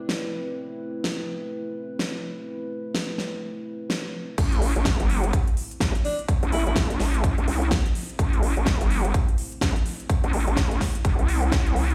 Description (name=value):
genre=bass house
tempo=126 BPM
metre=4/4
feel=swing 60% on 16ths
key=A minor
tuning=A4 = 440 Hz
part: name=dark analog pad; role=sustained chords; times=0.0-11.9 s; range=A3 to C5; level=-38 LUFS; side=equal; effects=chorus, sidechain pumping
part: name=big-room dance drum kit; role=drums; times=0.1-11.9 s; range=crash cymbal, hi-hat, snare drum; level=-32 LUFS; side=equal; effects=none
part: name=vowel-sweep wobble bass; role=bass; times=4.4-11.9 s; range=G1 to C2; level=-26 LUFS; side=equal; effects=chorus, overdrive, sidechain pumping
part: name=electronic kick drum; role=drums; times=4.4-11.6 s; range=none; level=-26 LUFS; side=equal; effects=none
part: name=breathy alto saxophone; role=melody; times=6.0-6.7 s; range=D4 to E4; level=-35 LUFS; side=equal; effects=delay
room=light reverb, digital ambience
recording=played on a big sound system in a bare room, large studio reverb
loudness=-25 LUFS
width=mono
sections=0.0-4.4 A section; 4.4-11.9 B section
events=drop 4.4-11.9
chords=0.0 Am